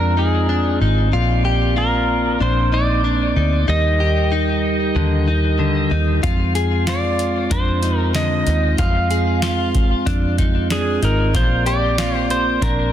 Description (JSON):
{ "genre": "dream pop", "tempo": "94 BPM", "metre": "4/4", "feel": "straight", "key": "F dorian", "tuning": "A4 = 440 Hz", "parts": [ { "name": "clean lap steel guitar", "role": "melody", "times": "0.0-12.9 s", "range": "Ab4 to F5", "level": "-23 LUFS", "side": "right 1 dB", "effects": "ping-pong delay" }, { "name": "mellow tonewheel organ", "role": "sustained chords", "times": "0.0-12.9 s", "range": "G3 to Eb5", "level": "-23 LUFS", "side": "right 2 dB", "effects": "slow rotary speaker" }, { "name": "direct-recorded clean electric guitar", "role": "arpeggios", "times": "0.0-12.9 s", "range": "D3 to Ab4", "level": "-23 LUFS", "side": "left 4 dB", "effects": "wide subtle chorus, ping-pong delay" }, { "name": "vintage muted fingered electric bass", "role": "bass", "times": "0.0-12.9 s", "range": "Ab1 to F2", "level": "-19 LUFS", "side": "equal", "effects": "none" }, { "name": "booming analog drum machine", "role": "drums", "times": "6.2-12.8 s", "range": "hi-hat, kick drum, snare drum", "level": "-21 LUFS", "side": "equal", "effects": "soft clipping on snare" } ], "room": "light reverb, digital ambience", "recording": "dense, heavily limited modern master", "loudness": "-15 LUFS", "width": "side -10 dB against mid", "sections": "0.0-12.9 A section", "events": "none", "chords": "0.0 Fm; 1.1 Bbadd9; 3.7 Eb; 6.2 Fm; 11.3 Bbadd9", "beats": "0.49 | 1.13 1.77 2.41 3.04 | 3.68 4.32 4.96 5.60 | 6.24 6.88 7.51 8.15 | 8.79 9.43 10.07 10.70 | 11.34 11.98 12.62" }